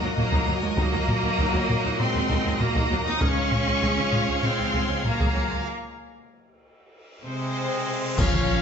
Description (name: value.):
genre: cinematic, epic orchestral film score.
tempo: 98 BPM.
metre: 4/4.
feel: straight.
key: unclear.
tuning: A4 = 440 Hz.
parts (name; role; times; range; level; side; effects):
warm symphonic violin section; melody; 0.0-8.6 s; C5 to Eb6; -31 LUFS; left 3 dB; none.
rich symphonic violin section; second line; 0.0-8.6 s; Bb4 to F5; -32 LUFS; left 3 dB; none.
clear studio viola section; accompaniment; 0.0-8.6 s; Gb3 to Db5; -34 LUFS; right 1 dB; none.
dark trombone section; sustained chords; 0.0-8.6 s; Ab2 to F4; -37 LUFS; right 4 dB; none.
pipe organ, plenum; sustained chords; 0.0-8.6 s; Ab3 to F5; -35 LUFS; left 1 dB; none.
warm French horn section; sustained chords; 0.0-8.6 s; F3 to F4; -32 LUFS; left 3 dB; none.
rich studio double bass section; bass; 0.0-8.6 s; Bb1 to Eb2; -31 LUFS; right 2 dB; none.
rich symphonic cello section; bass; 0.0-8.6 s; C3 to Eb4; -29 LUFS; right 3 dB; none.
solo taiko drums; drums; 0.2-8.6 s; none; -27 LUFS; equal; none.
cymbal swell, clash cymbals and concert bass drum; percussion; 5.7-8.6 s; none; -29 LUFS; left 1 dB; none.
cymbal swell and sub drop; sound effects; 7.0-8.6 s; none; -36 LUFS; left 1 dB; none.
mellow trumpet; stabs; 7.2-8.6 s; Ab3 to Db4; -31 LUFS; right 3 dB; none.
timpani; percussion; 8.2-8.6 s; Bb2; -28 LUFS; left 3 dB; none.
room: moderate scoring stage reverb, RT60 1.6 s.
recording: nothing above 7.8 kHz.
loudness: -21 LUFS.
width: side -7 dB against mid.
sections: 0.0-8.2 A section.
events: break 5.7-8.2; cymbal swell 7.0-8.2; band accent 8.2-8.6; impact 8.2-8.6.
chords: 0.0 Ebm; 3.2 Db.